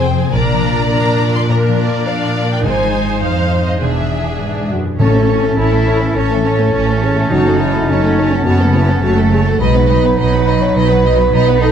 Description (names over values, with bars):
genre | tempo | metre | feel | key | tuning
cinematic | 104 BPM | 4/4 | straight | A lydian from 5.0 s | A4 = 441 Hz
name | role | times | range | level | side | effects
warm symphonic violin section | melody | 0.0-11.7 s | D5 to C6 | -25 LUFS | left 2 dB | none
rich symphonic violin section | second line | 0.0-11.7 s | G#4 to D#5 | -23 LUFS | left 1 dB | none
rich symphonic viola section | accompaniment | 0.0-11.7 s | F#3 to C5 | -22 LUFS | right 3 dB | none
concert harp | arpeggios | 0.0-11.7 s | E2 to Eb5 | -20 LUFS | left 10 dB | none
rich symphonic cello section | bass | 0.0-11.7 s | E2 to E4 | -19 LUFS | right 2 dB | none
rich symphonic double bass section | bass | 0.3-11.7 s | E1 to B1 | -17 LUFS | right 3 dB | none
timpani | percussion | 2.6-5.8 s | Ab2 to A2 | -20 LUFS | left 1 dB | none
dark French horn section | sustained chords | 4.7-11.7 s | C#4 to C#5 | -17 LUFS | equal | none
warm clarinet | second line | 5.0-11.6 s | C#4 to D#4 | -23 LUFS | equal | none
warm oboe | second line | 5.0-11.7 s | A5 to B5 | -24 LUFS | right 2 dB | none
room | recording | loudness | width
light reverb | close, detailed microphones | -11 LUFS | side -8 dB against mid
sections
0.0-5.0 A section; 5.0-11.7 A section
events
none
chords
0.3 Bb; 2.7 Ab; 3.8 E7; 5.0 A; 7.3 F#m; 9.6 B